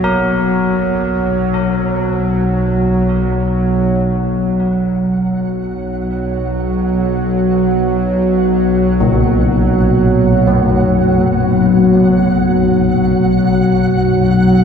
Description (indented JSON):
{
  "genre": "dark ambient drone",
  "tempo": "free time",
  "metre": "none",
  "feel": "none",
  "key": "unclear",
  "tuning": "A4 = 440 Hz",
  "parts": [
    { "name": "old church bells", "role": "arpeggios", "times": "0.0-14.6 s", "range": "A#2 to A#4", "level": "-19 LUFS", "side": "left 1 dB", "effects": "ping-pong delay" },
    { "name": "bowed-like drone", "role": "drone", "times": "0.0-14.6 s", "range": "B1 to F#3", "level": "-12 LUFS", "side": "equal", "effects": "built-in reverb" },
    { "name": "flickering grainy texture", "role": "texture", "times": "4.3-14.6 s", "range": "F#5", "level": "-26 LUFS", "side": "right 2 dB", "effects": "built-in reverb" }
  ],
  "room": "wet cathedral reverb, RT60 6.7 s",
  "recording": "in a vast, echoing space",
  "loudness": "-12 LUFS",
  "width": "side -7 dB against mid",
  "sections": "0.0-4.0 A section; 4.0-14.6 B section",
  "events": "fade-in on synth texture 4.0-14.6",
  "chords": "0.0 Gmaj7/B (rootless); 4.0 B5",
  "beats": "free time"
}